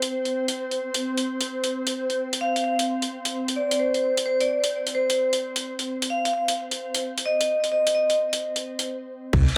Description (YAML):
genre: UK garage, two-step garage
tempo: 130 BPM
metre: 4/4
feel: swing 66% on 16ths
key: C minor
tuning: A4 = 436 Hz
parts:
  - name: ethereal airy pad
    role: sustained chords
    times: 0.0-9.6 s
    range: C4 to C5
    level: -32 LUFS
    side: equal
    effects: ensemble chorus, built-in reverb, phaser, sidechain pumping
  - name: breakbeat sampler-style drum kit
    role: drums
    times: 0.0-9.5 s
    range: crash cymbal, hi-hat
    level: -30 LUFS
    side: equal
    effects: none
  - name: vibraphone with medium hard mallets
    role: melody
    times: 2.4-8.2 s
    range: C5 to F5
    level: -26 LUFS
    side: equal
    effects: tape echo
  - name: dark detuned saw bass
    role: bass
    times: 9.3-9.5 s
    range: C2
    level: -21 LUFS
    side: equal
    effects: sidechain pumping
  - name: electronic kick drum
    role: drums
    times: 9.3-9.5 s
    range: none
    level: -27 LUFS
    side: equal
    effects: none
  - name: sub drop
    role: sound effects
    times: 9.3-9.6 s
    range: none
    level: -28 LUFS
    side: equal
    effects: none
room: moderate spring reverb, RT60 1.8 s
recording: echo-heavy mix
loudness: -25 LUFS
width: mono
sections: 0.0-9.3 A section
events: stop 8.9-9.3; impact 9.3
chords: none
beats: | 0.10 0.56 1.02 1.49 | 1.95 2.41 2.87 3.33 | 3.79 4.25 4.72 5.18 | 5.64 6.10 6.56 7.02 | 7.49 7.95 8.41 8.87 | 9.33